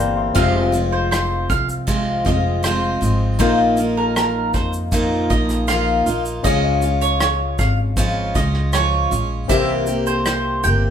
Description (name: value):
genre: acoustic pop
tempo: 79 BPM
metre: 4/4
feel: straight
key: unclear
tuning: A4 = 440 Hz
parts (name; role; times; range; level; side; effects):
- picked steel-string acoustic guitar; accompaniment; 0.0-10.9 s; F2 to G4; -21 LUFS; right 1 dB; none
- warm concert grand piano; accompaniment; 0.0-10.9 s; C4 to C6; -25 LUFS; left 8 dB; none
- mandolin; arpeggios; 0.0-10.8 s; Bb4 to G5; -22 LUFS; right 3 dB; none
- upright bass; bass; 0.0-10.9 s; F1 to F2; -22 LUFS; equal; none
- vintage brush drum kit; drums; 0.4-10.8 s; kick drum, rim click, shaker; -24 LUFS; equal; none
room: moderate large studio reverb, RT60 0.8 s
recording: band playing live in one room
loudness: -16 LUFS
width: side -8 dB against mid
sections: 0.0-10.9 A section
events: grand piano fill 0.0-0.4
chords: 0.4 Fm; 3.4 Bbsus4; 6.5 Db; 9.5 C7